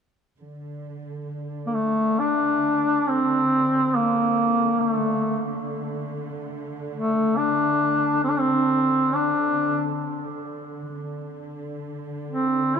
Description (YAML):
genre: caucasian folk, Caucasian lament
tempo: free time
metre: none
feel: none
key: unclear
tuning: A4 = 440 Hz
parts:
  - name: dark studio string section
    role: drone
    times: 0.4-12.8 s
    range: D3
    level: -33 LUFS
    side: right 1 dB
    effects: none
  - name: warm duduk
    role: melody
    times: 1.7-12.8 s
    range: A3 to F4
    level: -21 LUFS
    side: equal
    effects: none
room: wet cathedral reverb, RT60 4.5 s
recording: dark, warm production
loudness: -20 LUFS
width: side -7 dB against mid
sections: 0.4-12.8 A section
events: none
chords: none